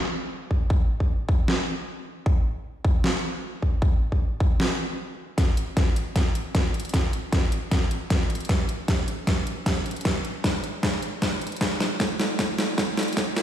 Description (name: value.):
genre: future bass.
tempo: 154 BPM.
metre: 4/4.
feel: swing 55% on 16ths, half-time.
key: none.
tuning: none.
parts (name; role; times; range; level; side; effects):
electronic kick drum; drums; 0.5-13.3 s; none; -23 LUFS; equal; none.
pop drum kit; drums; 1.5-13.4 s; hi-hat, snare drum; -26 LUFS; equal; overdrive, low-pass filter on snare, low-pass filter on hats, low-pass filter on room.
room: moderate lush hall reverb, RT60 1.9 s.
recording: played on a big sound system in a bare room, stone room reverb, high-pass filter.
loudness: -22 LUFS.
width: side -11 dB against mid.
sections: 0.0-5.4 A section; 5.4-13.4 B section.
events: build-up 5.4-13.4; drum fill 5.4-13.4; filter sweep 5.4-13.4.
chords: none.